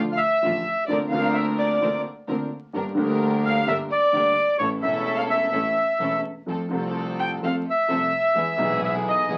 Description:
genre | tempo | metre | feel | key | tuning
tango | 129 BPM | 4/4 | rubato | unclear | A4 = 440 Hz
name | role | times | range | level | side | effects
warm violin | second line | 0.0-9.4 s | C#5 to G5 | -32 LUFS | equal | none
warm concert grand piano | accompaniment | 0.0-9.4 s | E1 to A4 | -30 LUFS | equal | none
warm studio string section | stabs | 0.0-9.4 s | A3 to Bb4 | -33 LUFS | equal | none
clear double bass | bass | 0.0-9.4 s | E1 to F2 | -32 LUFS | equal | none
bandoneon | melody | 0.1-9.4 s | C#5 to G5 | -24 LUFS | equal | none
room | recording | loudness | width
moderate club reverb, RT60 0.5 s | very old 78 rpm record, vinyl crackle | -23 LUFS | mono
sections
0.0-9.4 A section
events
none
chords
0.0 Dm; 0.9 Bbadd9/D; 2.7 Gm; 4.6 A; 6.5 F; 8.4 E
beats
0.43 | 0.90 1.36 1.82 2.28 | 2.74 3.21 3.67 4.13 | 4.60 5.07 5.53 6.01 | 6.49 6.96 7.43 7.90 | 8.37 8.83 9.29

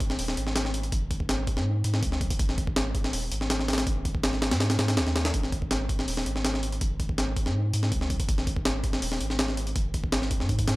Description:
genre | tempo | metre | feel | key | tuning
drum and bass, jungle | 163 BPM | 4/4 | straight | unclear | A4 = 443 Hz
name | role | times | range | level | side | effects
saturated sub bass | bass | 0.0-10.8 s | D#1 to G#2 | -29 LUFS | equal | none
jungle sampler-style drum kit | drums | 0.0-10.8 s | hi-hat, kick drum, snare drum | -26 LUFS | equal | overdrive
room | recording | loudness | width
little or no reverb | dry, gritty hardware recording | -25 LUFS | side -20 dB against mid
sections
0.0-10.8 A section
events
none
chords
none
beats
0.19 0.56 | 0.92 1.29 1.66 2.03 | 2.40 2.76 3.13 3.50 | 3.87 4.24 4.60 4.97 | 5.34 5.71 6.08 6.45 | 6.81 7.18 7.55 7.92 | 8.29 8.65 9.02 9.39 | 9.76 10.13 10.49

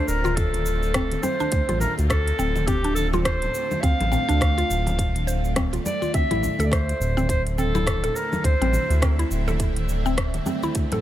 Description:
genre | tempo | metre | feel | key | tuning
organic downtempo | 104 BPM | 4/4 | swing 58% on 16ths | D minor | A4 = 440 Hz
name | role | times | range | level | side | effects
warm clarinet | melody | 0.0-9.3 s | G4 to F5 | -27 LUFS | equal | digital delay
bowed-like drone | sustained chords | 0.0-11.0 s | D3 to E5 | -33 LUFS | right 1 dB | built-in reverb, phaser, sidechain pumping
mallet-like synth pluck | arpeggios | 0.0-11.0 s | C4 to C5 | -29 LUFS | left 1 dB | chorus, phaser, cassette tape, digital delay
smooth synth bass | bass | 0.1-11.0 s | D1 to D2 | -24 LUFS | equal | sidechain pumping
organic electronic drum kit | drums | 0.1-11.0 s | congas, hi-hat, rim click, shaker | -29 LUFS | equal | none
bongos and congas | percussion | 0.2-10.9 s | none | -34 LUFS | left 1 dB | none
electronic kick drum | drums | 0.4-10.9 s | none | -25 LUFS | equal | none
room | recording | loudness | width
digital ambience | none | -20 LUFS | side -13 dB against mid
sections
0.0-11.0 A section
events
none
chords
0.0 Dm7; 6.1 Am/D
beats
0.37 0.94 | 1.52 2.10 2.67 3.25 | 3.83 4.41 4.98 5.56 | 6.14 6.71 7.29 7.87 | 8.45 9.02 9.60 10.18 | 10.75

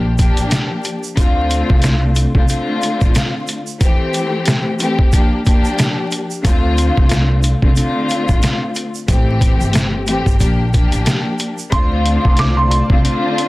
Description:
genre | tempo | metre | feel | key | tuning
hip hop, boom-bap hip-hop | 91 BPM | 4/4 | swing 59% on 16ths | D minor | A4 = 441 Hz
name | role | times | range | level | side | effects
warm symphonic string section | accompaniment | 0.0-13.5 s | D3 to G4 | -18 LUFS | left 2 dB | cassette tape, high-pass filter, low-pass filter
upright bass | bass | 0.0-13.0 s | G1 to D2 | -17 LUFS | equal | none
trip hop sampler-style drum kit | drums | 0.2-13.5 s | hi-hat, kick drum, snare drum | -15 LUFS | equal | none
tube shaker | percussion | 0.2-11.7 s | none | -33 LUFS | right 6 dB | none
bright upright piano | melody | 11.7-13.5 s | C6 to D6 | -20 LUFS | right 2 dB | high-pass filter, low-pass filter, digital delay
lush unison pad | sustained chords | 11.7-13.5 s | F4 to A5 | -28 LUFS | right 1 dB | chorus, high-pass filter, low-pass filter
room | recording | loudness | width
small room ambience | dense, heavily limited modern master, vinyl crackle | -13 LUFS | side -20 dB against mid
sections
0.0-11.7 A section; 11.7-13.5 B section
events
none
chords
0.0 Gm7; 1.2 Dm7; 3.8 Am7; 5.1 Gm7; 6.4 Dm7; 9.1 Am7; 10.4 Gm7; 11.7 Dm7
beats
0.51 | 1.17 1.83 2.49 3.15 | 3.81 4.47 5.13 5.79 | 6.45 7.11 7.77 8.43 | 9.09 9.74 10.40 11.06 | 11.72 12.38 13.04

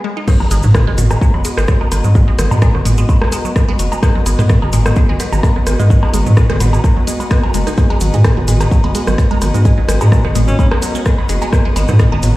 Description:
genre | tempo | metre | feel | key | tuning
minimal techno | 128 BPM | 4/4 | swing 54% on 16ths | G# minor | A4 = 436 Hz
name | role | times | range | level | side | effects
resonant blip pluck | riff | 0.0-12.3 s | F#3 to D#4 | -23 LUFS | equal | phaser, sidechain pumping, digital delay
electronic kick drum | drums | 0.3-12.1 s | none | -12 LUFS | equal | none
house drum kit | drums | 0.3-12.3 s | crash cymbal, hi-hat, rim click | -26 LUFS | left 1 dB | high-pass filter on snare, high-pass filter on hats, high-pass filter on cymbals
booming analog drum machine | percussion | 0.3-12.3 s | rim click, toms, woodblock | -18 LUFS | equal | digital delay
cabasa | percussion | 0.3-12.3 s | none | -29 LUFS | right 3 dB | none
impact | sound effects | 0.3-2.2 s | none | -22 LUFS | equal | none
airy breathy pad | texture | 0.3-12.4 s | B3 to D#5 | -23 LUFS | equal | chorus, sidechain pumping
rubbery square bass | bass | 0.5-12.4 s | F#1 to G#2 | -14 LUFS | equal | sidechain pumping
clear alto saxophone | melody | 10.5-10.7 s | C#4 | -25 LUFS | equal | digital delay
room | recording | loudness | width
little or no reverb | played on a big sound system in a bare room, stone room reverb | -10 LUFS | side -17 dB against mid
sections
0.3-12.4 A section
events
break 0.0; drop 0.3-12.4; impact 0.3-2.2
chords
0.3 G#m7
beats
| 0.28 0.74 1.21 1.68 | 2.15 2.62 3.09 3.56 | 4.03 4.50 4.96 5.43 | 5.90 6.37 6.84 7.31 | 7.78 8.24 8.71 9.18 | 9.65 10.12 10.59 11.06 | 11.53 11.99

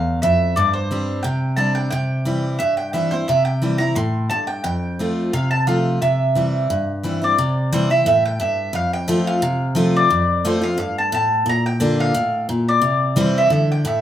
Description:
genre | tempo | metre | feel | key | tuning
bluegrass | 176 BPM | 4/4 | straight | C mixolydian | A4 = 442 Hz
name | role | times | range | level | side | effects
mandolin | melody | 0.0-14.0 s | C5 to C6 | -20 LUFS | equal | none
picked steel-string acoustic guitar | accompaniment | 0.0-14.0 s | E2 to G4 | -19 LUFS | equal | none
room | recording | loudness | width
moderate large studio reverb, RT60 0.9 s | band playing live in one room | -17 LUFS | side -11 dB against mid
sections
0.0-7.4 A section; 7.4-14.0 B section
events
none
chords
0.0 N.C.; 0.6 Gsus4; 1.9 C; 4.6 F; 6.0 C; 8.7 F; 11.5 Bb; 12.8 C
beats
0.23 | 0.56 0.91 1.25 1.58 | 1.93 2.27 2.60 2.94 | 3.29 3.63 3.97 4.31 | 4.65 4.99 5.33 5.67 | 6.01 6.35 6.69 7.03 | 7.37 7.71 8.05 8.39 | 8.73 9.08 9.42 9.76 | 10.10 10.44 10.78 11.12 | 11.46 11.80 12.14 12.49 | 12.83 13.17 13.51 13.85

